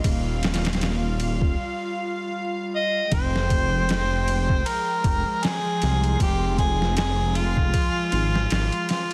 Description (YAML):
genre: trip hop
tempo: 78 BPM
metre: 4/4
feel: swing 57% on 16ths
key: F minor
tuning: A4 = 439 Hz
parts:
  - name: dark studio string section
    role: sustained chords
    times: 0.0-9.1 s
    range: F3 to G5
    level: -33 LUFS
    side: equal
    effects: none
  - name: dark detuned saw bass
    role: bass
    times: 0.0-8.7 s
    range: Eb1 to C2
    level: -27 LUFS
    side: equal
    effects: none
  - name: boom bap sampler-style drum kit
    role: drums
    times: 0.0-9.1 s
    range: kick drum, ride cymbal, snare drum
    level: -28 LUFS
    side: equal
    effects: studio ambience
  - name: mellow harmonica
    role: melody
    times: 2.8-9.1 s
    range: F4 to Eb5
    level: -27 LUFS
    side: equal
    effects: dub echo
  - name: backwards swelling texture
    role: texture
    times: 4.2-9.1 s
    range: C6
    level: -43 LUFS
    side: equal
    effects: none
room: light reverb, digital ambience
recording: dense, heavily limited modern master, vinyl crackle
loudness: -23 LUFS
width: mono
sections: 0.0-3.1 A section; 3.1-9.1 B section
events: break 1.6-3.1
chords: 0.0 Ebadd9; 3.1 Fmadd9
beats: | 0.04 0.81 1.58 2.35 | 3.12 3.89 4.66 5.43 | 6.20 6.97 7.74 8.51